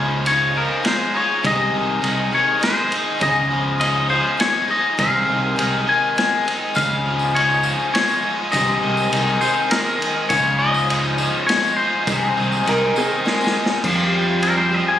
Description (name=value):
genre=folk rock and heartland rock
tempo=102 BPM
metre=3/4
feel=straight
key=unclear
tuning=A4 = 441 Hz
part: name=twangy electric guitar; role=melody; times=0.0-15.0 s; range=Bb4 to Ab5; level=-20 LUFS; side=left 2 dB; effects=none
part: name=picked twelve-string acoustic guitar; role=accompaniment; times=0.0-15.0 s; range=F2 to Ab4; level=-25 LUFS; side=left 4 dB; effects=none
part: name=bright tonewheel organ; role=sustained chords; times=0.0-15.0 s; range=G3 to Eb6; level=-31 LUFS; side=equal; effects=none
part: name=overdriven electric guitar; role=riff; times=0.0-15.0 s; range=C3 to Eb4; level=-22 LUFS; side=right 1 dB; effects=none
part: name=fingered electric bass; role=bass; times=0.0-14.8 s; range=C2 to F2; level=-24 LUFS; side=equal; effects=none
part: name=vintage drum kit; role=drums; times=0.3-14.6 s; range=crash cymbal, kick drum, ride cymbal, snare drum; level=-26 LUFS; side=equal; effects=none
part: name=tambourine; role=percussion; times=6.7-13.5 s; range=none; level=-34 LUFS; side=right 2 dB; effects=none
part: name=clear upright piano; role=second line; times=12.7-13.5 s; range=C4 to Bb4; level=-24 LUFS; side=right 1 dB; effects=analog delay
room=moderate studio reverb, RT60 0.7 s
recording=recorded on a phone in the room, studio reverb, compression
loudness=-16 LUFS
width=side -10 dB against mid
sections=0.0-13.8 A section; 13.8-15.0 B section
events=drum fill 13.2-13.8; clean electric guitar solo 13.8-15.0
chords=0.0 Dbadd9; 1.4 Ab/C; 3.2 Dbadd9; 5.0 Ab/C; 6.8 Dbadd9; 8.5 Ab/C; 10.3 Dbadd9; 12.1 Ab/C; 13.8 Fmadd9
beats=0.26 0.85 | 1.45 2.04 2.63 | 3.22 3.81 4.41 | 5.00 5.58 6.17 | 6.76 7.35 7.94 | 8.53 9.12 9.71 | 10.30 10.89 11.48 | 12.07 12.66 13.25 | 13.84 14.43